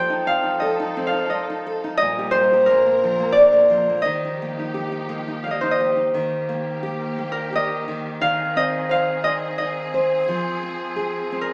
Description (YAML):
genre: children's music, lullaby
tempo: 87 BPM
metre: 3/4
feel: rubato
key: Eb major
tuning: A4 = 439 Hz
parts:
  - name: concert harp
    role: melody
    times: 0.0-11.5 s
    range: Bb4 to G5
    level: -22 LUFS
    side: equal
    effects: none
  - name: nylon-string guitar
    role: accompaniment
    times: 0.0-11.5 s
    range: Bb2 to C5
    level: -28 LUFS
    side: equal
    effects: none
  - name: clear symphonic string section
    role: sustained chords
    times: 0.0-11.5 s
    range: Bb2 to Bb4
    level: -34 LUFS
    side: equal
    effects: none
room: wet large studio reverb, RT60 1.3 s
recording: band playing live in one room, small speaker sound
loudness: -21 LUFS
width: mono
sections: 0.0-6.1 A section; 6.1-11.5 B section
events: none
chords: 0.0 F7; 2.0 Eb/Bb; 2.7 Bbadd9; 4.0 Ebadd9; 6.1 Eb; 8.2 Ab/Eb; 10.3 Fm